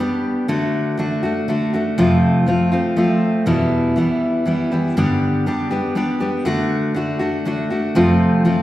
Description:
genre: rock.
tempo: 120 BPM.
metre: 3/4.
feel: straight.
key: unclear.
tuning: A4 = 440 Hz.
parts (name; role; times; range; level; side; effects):
picked steel-string acoustic guitar; solo; 0.0-8.6 s; E2 to G4; -16 LUFS; equal; none.
room: wet recital hall reverb, RT60 1.5 s.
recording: recorded in a church or concert hall.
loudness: -16 LUFS.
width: side -14 dB against mid.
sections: 0.0-8.6 A section.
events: none.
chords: 0.5 D; 2.0 F; 3.5 Em; 5.0 G; 6.5 D; 8.0 F.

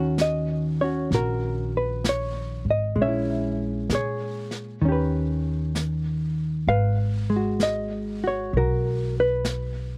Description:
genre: jazz ballad.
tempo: 65 BPM.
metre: 4/4.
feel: swing 67% on 8ths.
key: Eb minor.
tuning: A4 = 440 Hz.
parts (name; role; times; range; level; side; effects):
hollow-body jazz guitar; accompaniment; 0.0-10.0 s; Eb3 to F5; -27 LUFS; equal; none.
upright bass; bass; 0.0-10.0 s; Ab1 to Bb2; -30 LUFS; equal; none.
vintage brush drum kit; drums; 0.2-10.0 s; brushed snare drum, hi-hat, snare drum; -33 LUFS; equal; none.
room: little or no reverb.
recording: recorded outdoors, with no room sound.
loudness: -25 LUFS.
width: mono.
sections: 0.0-10.0 A section.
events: none.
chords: 0.0 Ebm7; 3.0 Bbm7b5; 4.8 Ebaug7; 6.7 Abm7.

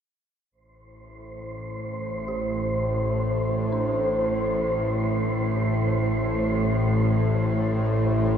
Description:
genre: dark ambient drone.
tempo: free time.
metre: none.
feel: none.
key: A minor.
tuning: A4 = 440 Hz.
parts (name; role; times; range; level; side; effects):
bowed-like drone; drone; 1.4-8.4 s; A1 to A2; -24 LUFS; equal; built-in reverb.
wind-like tuned noise texture; texture; 1.3-8.4 s; C5; -29 LUFS; equal; built-in reverb, shimmer reverb.
dark detuned synth bell; arpeggios; 2.3-8.4 s; D4 to G4; -43 LUFS; right 3 dB; none.
room: wet plate reverb, RT60 3.4 s.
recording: echo-heavy mix.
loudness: -22 LUFS.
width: side -8 dB against mid.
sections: 0.5-8.4 A section.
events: none.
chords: 0.5 Am.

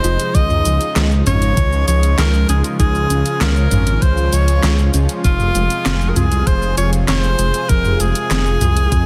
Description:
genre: synthwave.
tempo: 98 BPM.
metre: 4/4.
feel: straight.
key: unclear.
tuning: A4 = 440 Hz.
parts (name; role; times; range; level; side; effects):
clear tenor saxophone; melody; 0.0-9.1 s; F4 to Eb5; -23 LUFS; equal; tape echo.
lush unison pad; sustained chords; 0.0-9.1 s; C3 to Ab4; -26 LUFS; equal; chorus, phaser, sidechain pumping.
thumb-piano-like synth pluck; arpeggios; 0.0-9.0 s; Eb3 to Ab4; -29 LUFS; equal; chorus, tape echo.
dark detuned saw bass; bass; 0.0-9.1 s; F1 to F2; -18 LUFS; equal; tube saturation, sidechain pumping.
pop drum kit; drums; 0.0-9.0 s; cabasa, handclaps, hi-hat, snare drum, toms; -23 LUFS; equal; overdrive.
electronic kick drum; drums; 0.3-9.0 s; none; -18 LUFS; equal; none.
room: light reverb, digital ambience.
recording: dense, heavily limited modern master.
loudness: -16 LUFS.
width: mono.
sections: 0.0-9.1 A section.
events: none.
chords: 0.3 Dbadd9; 5.2 Fm.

